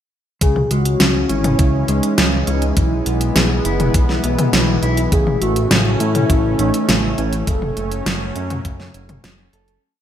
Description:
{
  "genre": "synthwave",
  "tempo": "102 BPM",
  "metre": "4/4",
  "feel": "straight",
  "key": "unclear",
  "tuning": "A4 = 437 Hz",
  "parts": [
    { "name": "warm velvety synth lead", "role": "melody", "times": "0.4-8.0 s", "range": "C#4 to A4", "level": "-23 LUFS", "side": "left 1 dB", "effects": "chorus, digital delay" },
    { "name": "lush unison pad", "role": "sustained chords", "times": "0.7-9.8 s", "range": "E3 to C#4", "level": "-23 LUFS", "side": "equal", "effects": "chorus, sidechain pumping" },
    { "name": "mellow electric guitar", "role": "arpeggios", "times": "0.4-9.8 s", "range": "C#3 to A4", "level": "-25 LUFS", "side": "right 1 dB", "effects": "tremolo, digital delay" },
    { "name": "fat analog bass", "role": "bass", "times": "0.4-9.8 s", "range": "F#1 to A2", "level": "-20 LUFS", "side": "equal", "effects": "none" },
    { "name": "electronic kick drum", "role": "drums", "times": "0.4-8.8 s", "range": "none", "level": "-17 LUFS", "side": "equal", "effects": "studio ambience" },
    { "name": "pop drum kit", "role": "drums", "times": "0.4-9.8 s", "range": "hi-hat, snare drum, toms", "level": "-19 LUFS", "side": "equal", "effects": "studio ambience, gated reverb" }
  ],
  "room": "light reverb, digital ambience",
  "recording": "bright 1980s-style digital production",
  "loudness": "-14 LUFS",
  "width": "side -10 dB against mid",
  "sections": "0.4-9.8 verse",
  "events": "fade-out 6.7-9.8",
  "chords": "0.4 C#m; 2.8 E; 5.1 A; 7.5 F#m"
}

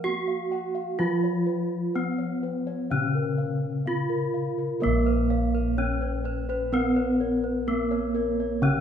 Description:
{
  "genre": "gamelan",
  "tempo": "63 BPM",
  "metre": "4/4",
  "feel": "straight",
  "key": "Bb pelog",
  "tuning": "A4 = 440 Hz",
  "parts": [
    { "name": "gamelan-type bronze metallophone", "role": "melody", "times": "0.0-8.8 s", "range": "Bb3 to Gb4", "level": "-28 LUFS", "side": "right 2 dB", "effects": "none" },
    { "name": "gamelan-type bronze metallophone", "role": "accompaniment", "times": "0.0-8.8 s", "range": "Db3 to Cb4+35c", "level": "-29 LUFS", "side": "equal", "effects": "none" },
    { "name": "gamelan-type bossed gongs", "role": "arpeggios", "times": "0.0-8.8 s", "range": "Bb4 to Gb5", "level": "-33 LUFS", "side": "left 7 dB", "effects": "none" },
    { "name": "gamelan-type bossed gongs", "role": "bass", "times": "0.0-8.8 s", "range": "Bb1 to Bb4", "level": "-31 LUFS", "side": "left 1 dB", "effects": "none" },
    { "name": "gamelan-type bronze metallophone", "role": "arpeggios", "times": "4.8-8.8 s", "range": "Bb4 to F5", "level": "-35 LUFS", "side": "right 5 dB", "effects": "none" }
  ],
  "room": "moderate recital hall reverb, RT60 1.4 s",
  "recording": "minimal, uncompressed stereo recording",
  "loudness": "-24 LUFS",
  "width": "side -8 dB against mid",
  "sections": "0.0-4.8 A section; 4.8-8.8 A section",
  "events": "none",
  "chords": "none"
}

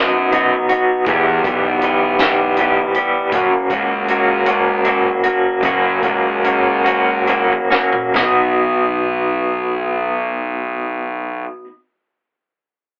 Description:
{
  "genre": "indie rock",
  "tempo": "45-53 BPM (dotted quarters)",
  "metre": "6/8",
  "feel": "straight",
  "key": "B major",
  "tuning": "A4 = 439 Hz",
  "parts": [
    { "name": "electric guitar through a small old amp", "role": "riff", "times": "0.0-11.7 s", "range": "E2 to G4", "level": "-18 LUFS", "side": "equal", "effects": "tremolo" },
    { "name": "fuzz fingered electric bass", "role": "bass", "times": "0.0-11.4 s", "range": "B1 to F#2", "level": "-22 LUFS", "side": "equal", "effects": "overdrive" },
    { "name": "compact cocktail drum kit", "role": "drums", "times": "0.3-8.4 s", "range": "hi-hat, kick drum, snare drum, toms", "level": "-24 LUFS", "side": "equal", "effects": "none" }
  ],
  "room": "moderate studio ambience, RT60 0.5 s",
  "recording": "band playing live in one room, telephone sound",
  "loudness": "-16 LUFS",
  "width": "mono",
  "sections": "0.0-8.1 A section; 8.1-10.8 B section",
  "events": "slowing down 3.3-8.1; drum fill 7.7-8.1",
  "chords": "0.0 B; 1.1 Em; 3.3 F#; 8.1 B"
}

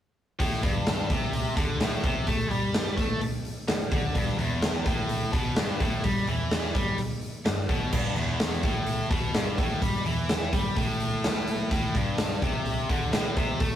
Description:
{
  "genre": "hard rock",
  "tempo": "127 BPM",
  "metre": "4/4",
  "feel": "straight",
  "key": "unclear",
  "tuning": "A4 = 441 Hz",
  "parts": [
    { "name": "scooped high-gain guitar", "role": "riff", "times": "0.4-13.8 s", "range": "E2 to A3", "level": "-36 LUFS", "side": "right 4 dB", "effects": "distortion" },
    { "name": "tight distorted guitar", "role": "riff", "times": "0.4-13.8 s", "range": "E2 to A3", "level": "-30 LUFS", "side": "left 2 dB", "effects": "distortion" },
    { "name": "hollow-body short-scale picked electric bass", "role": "bass", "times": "0.4-13.8 s", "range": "E1 to A2", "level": "-36 LUFS", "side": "equal", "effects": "none" },
    { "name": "big rock drum kit", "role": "drums", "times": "0.4-13.8 s", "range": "crash cymbal, hi-hat, kick drum, snare drum", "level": "-27 LUFS", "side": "equal", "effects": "none" }
  ],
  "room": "light reverb",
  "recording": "rough rehearsal-room recording",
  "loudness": "-24 LUFS",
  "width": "side -10 dB against mid",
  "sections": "0.4-13.8 A section",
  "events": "none",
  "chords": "0.4 Gsus24; 4.2 Emadd11; 11.7 Gsus24"
}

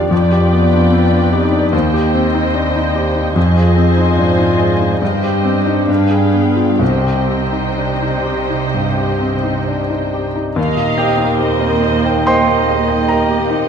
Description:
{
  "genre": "classical, romantic movement for piano and orchestra",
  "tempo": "62-75 BPM",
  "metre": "4/4",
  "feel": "rubato",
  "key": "C minor, Eb major from 10.6 s",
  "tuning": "A4 = 440 Hz",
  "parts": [
    { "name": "clear grand piano", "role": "melody", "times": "0.0-13.7 s", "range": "C2 to C6", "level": "-15 LUFS", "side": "left 1 dB", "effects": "none" },
    { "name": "muted symphonic violin section", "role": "second line", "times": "0.0-13.7 s", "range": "Bb3 to Ab5", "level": "-23 LUFS", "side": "left 2 dB", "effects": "none" },
    { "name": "muted symphonic viola section", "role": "accompaniment", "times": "0.0-13.7 s", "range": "G4 to Eb5", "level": "-24 LUFS", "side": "right 3 dB", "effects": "none" },
    { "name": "warm French horn section", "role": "sustained chords", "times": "0.0-13.7 s", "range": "Bb3 to G4", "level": "-21 LUFS", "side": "left 1 dB", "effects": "none" },
    { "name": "muted symphonic cello section", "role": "bass", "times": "0.0-13.7 s", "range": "Eb2 to C3", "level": "-20 LUFS", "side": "right 5 dB", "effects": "none" },
    { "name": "timpani", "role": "percussion", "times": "5.0-8.2 s", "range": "G2 to C3", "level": "-25 LUFS", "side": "equal", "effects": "none" },
    { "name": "muted symphonic violin section", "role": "melody", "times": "10.6-13.7 s", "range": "Eb5 to F5", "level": "-24 LUFS", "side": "left 3 dB", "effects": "none" },
    { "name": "mellow clarinet", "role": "second line", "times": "10.6-13.7 s", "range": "Eb4", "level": "-25 LUFS", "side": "equal", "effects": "none" },
    { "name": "mellow bassoon", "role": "accompaniment", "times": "10.6-13.7 s", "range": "Bb3", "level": "-23 LUFS", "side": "right 4 dB", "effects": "none" },
    { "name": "muted symphonic double bass section", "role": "bass", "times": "10.6-13.7 s", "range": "Eb2", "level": "-25 LUFS", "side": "right 4 dB", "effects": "none" }
  ],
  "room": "wet scoring stage reverb, RT60 1.5 s",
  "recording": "none",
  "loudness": "-12 LUFS",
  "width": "side -7 dB against mid",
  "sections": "0.0-10.6 A section; 10.6-13.7 B section",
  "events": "none",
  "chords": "0.1 G7/F; 1.7 Cm/Eb; 3.4 Fm7; 5.0 Cm/G; 5.9 G7b9; 6.8 Cm; 10.6 Eb"
}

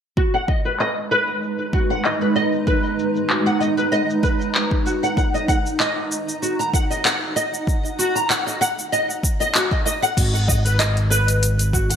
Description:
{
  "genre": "organic downtempo",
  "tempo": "96 BPM",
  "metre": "4/4",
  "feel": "swing 54% on 16ths",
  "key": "G# minor",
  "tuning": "A4 = 439 Hz",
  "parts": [
    { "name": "granular cloud pad", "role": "sustained chords", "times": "0.8-10.2 s", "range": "G#3 to A#5", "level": "-25 LUFS", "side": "right 2 dB", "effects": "built-in reverb, sidechain pumping" },
    { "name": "nylon-string guitar", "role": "arpeggios", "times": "0.2-12.0 s", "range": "F#4 to A#5", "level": "-22 LUFS", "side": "equal", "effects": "ensemble chorus, low-pass filter, digital delay" },
    { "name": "afro-pop drum kit", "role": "drums", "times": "0.2-12.0 s", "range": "cabasa, crash cymbal, handclaps, hi-hat", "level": "-23 LUFS", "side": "equal", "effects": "overdrive, low-pass filter on perc, low-pass filter on snare, low-pass filter on hats, low-pass filter on cymbals, low-pass filter on room, gated reverb" },
    { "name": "electronic kick drum", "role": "drums", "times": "0.2-11.9 s", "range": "none", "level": "-21 LUFS", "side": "equal", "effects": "overdrive" },
    { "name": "smooth synth bass", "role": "bass", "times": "10.2-12.0 s", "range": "G#1", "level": "-19 LUFS", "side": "equal", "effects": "none" }
  ],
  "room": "moderate plate reverb, RT60 2.2 s",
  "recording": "bright 1980s-style digital production",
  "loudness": "-18 LUFS",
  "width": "side -8 dB against mid",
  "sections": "0.2-10.2 A section; 10.2-12.0 B section",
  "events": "filter sweep on drum 0.2-10.2",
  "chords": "0.2 G#m7; 5.2 D#m; 10.2 G#m7"
}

